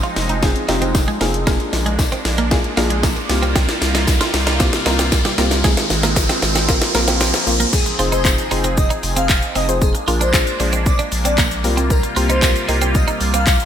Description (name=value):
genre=dance-pop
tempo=115 BPM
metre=4/4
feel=straight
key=F dorian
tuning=A4 = 440 Hz
part: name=soft round pluck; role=accompaniment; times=0.0-13.4 s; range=Ab3 to C5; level=-24 LUFS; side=left 2 dB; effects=chorus, sidechain pumping
part: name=filtered supersaw swell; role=sustained chords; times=0.0-13.7 s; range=C3 to Ab4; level=-24 LUFS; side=right 1 dB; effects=phaser, sidechain pumping
part: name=twelve-string electric guitar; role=riff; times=0.0-13.4 s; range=G3 to F4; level=-25 LUFS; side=right 5 dB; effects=lush chorus, low-pass filter
part: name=saturated sub bass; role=bass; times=0.0-13.6 s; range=F1 to C2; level=-21 LUFS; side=equal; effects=sidechain pumping
part: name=house drum kit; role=drums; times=0.0-13.7 s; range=crash cymbal, handclaps, hi-hat, kick drum, shaker, snare drum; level=-18 LUFS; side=equal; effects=gated reverb
part: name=riser and impact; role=sound effects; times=1.7-9.8 s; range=none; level=-24 LUFS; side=equal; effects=none
part: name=tambourine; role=percussion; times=0.2-13.6 s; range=none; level=-33 LUFS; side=left 7 dB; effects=none
part: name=airy dreamy lead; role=melody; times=7.7-13.6 s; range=Ab4 to F5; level=-23 LUFS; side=left 1 dB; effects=chorus, ping-pong delay
room=light reverb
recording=bright 1980s-style digital production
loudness=-14 LUFS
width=side -9 dB against mid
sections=0.0-7.7 A section; 7.7-13.7 B section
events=build-up 0.0-7.7; drum fill 0.0-7.7; riser 1.7-7.7; drop 7.7-13.7; impact 7.7-9.8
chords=0.0 Fm7; 1.5 Bb7; 3.3 C7sus4; 5.6 Ab; 6.7 Bbsus2; 7.7 Fm7; 9.8 Bb7; 11.6 C7sus4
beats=0.42 0.95 | 1.47 1.99 2.51 3.03 | 3.56 4.08 4.60 5.12 | 5.64 6.17 6.69 7.21 | 7.73 8.25 8.77 9.29 | 9.82 10.34 10.86 11.38 | 11.90 12.43 12.95 13.47